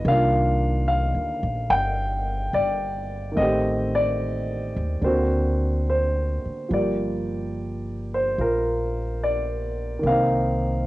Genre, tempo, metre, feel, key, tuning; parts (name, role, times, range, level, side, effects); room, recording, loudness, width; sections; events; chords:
jazz ballad; 72 BPM; 4/4; swing 69% on 8ths; A4 = 439 Hz
dark baby grand piano; accompaniment; 0.0-10.9 s; D3 to G5; -23 LUFS; equal; cassette tape
upright bass; bass; 0.0-10.9 s; G1 to Eb2; -26 LUFS; equal; transformer saturation
moderate small room reverb, RT60 0.5 s; home recording on cassette, nothing above 10.4 kHz; -21 LUFS; side -17 dB against mid
0.0-10.9 A section
0.1 Cm11; 3.4 Am7b5; 5.0 Daug7; 6.7 Gm7; 10.0 Cm7